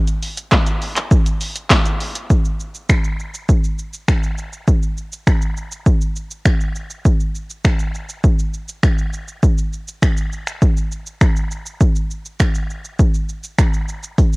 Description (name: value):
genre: pop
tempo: 101 BPM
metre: 4/4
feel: straight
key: none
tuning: none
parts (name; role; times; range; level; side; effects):
- punchy analog drum machine; drums; 0.1-14.4 s; finger snaps, handclaps, hi-hat, kick drum, shaker, snare drum; -15 LUFS; equal; overdrive, cassette tape
- group handclap; percussion; 0.5-1.8, 12.4-13.7 s; none; -34 LUFS; right 9 dB; none
room: digital ambience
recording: home recording on cassette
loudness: -16 LUFS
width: side -27 dB against mid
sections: 0.0-2.3 A section; 2.3-14.4 B section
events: drop 0.0-2.3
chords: none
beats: 0.52 1.11 1.71 | 2.30 2.90 3.49 4.08 | 4.68 5.27 5.87 6.46 | 7.05 7.65 8.24 8.84 | 9.43 10.02 10.62 11.21 | 11.81 12.40 12.99 13.59 | 14.18